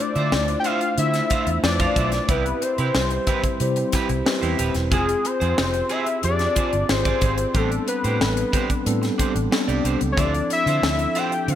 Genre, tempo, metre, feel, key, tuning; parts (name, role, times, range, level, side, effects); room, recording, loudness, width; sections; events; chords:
polished 1980s jazz-funk pop; 91 BPM; 4/4; straight; A4 = 438 Hz
fat analog lead; melody; 0.0-11.6 s; Ab4 to G5; -24 LUFS; left 2 dB
mellow tine electric piano; accompaniment; 0.0-11.6 s; E3 to E5; -26 LUFS; left 1 dB; medium stereo tremolo, analog chorus
electric guitar at the edge of break-up; riff; 0.0-11.4 s; D4 to F5; -29 LUFS; right 5 dB; lush chorus
vintage muted fingered electric bass; bass; 0.2-11.6 s; Eb1 to D3; -24 LUFS; right 1 dB
crisp fusion drum kit; drums; 0.2-11.6 s; hi-hat, kick drum, snare drum; -25 LUFS; equal; gated reverb
light reverb, studio reverb; bright 1980s-style digital production; -19 LUFS; side -11 dB against mid
0.0-11.6 A section
0.0 Dm9; 2.3 Cmaj7; 4.9 Fm; 7.5 Am11; 10.2 Dm9